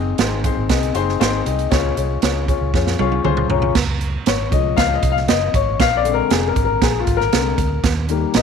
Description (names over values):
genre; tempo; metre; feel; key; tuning
uptempo 1960s-style soul; 118 BPM; 4/4; straight; Db major; A4 = 440 Hz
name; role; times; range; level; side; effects
dark upright piano; accompaniment; 0.0-8.4 s; D3 to Bb5; -19 LUFS; left 12 dB; none
vintage muted fingered electric bass; bass; 0.0-8.4 s; F1 to F2; -22 LUFS; right 1 dB; none
swinging big-band drum kit; drums; 0.2-8.4 s; crash cymbal, hi-hat, kick drum, snare drum, toms; -20 LUFS; right 5 dB; none
room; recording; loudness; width
light reverb, small room ambience; 1960s-style stereo; -16 LUFS; side -6 dB against mid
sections
0.0-3.8 A section; 3.8-8.4 B section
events
drum fill 2.7-3.8; upright piano fill 2.7-3.8; upright piano solo 3.8-8.4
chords
0.0 Ab; 1.7 Db; 5.8 Bb7; 7.8 Eb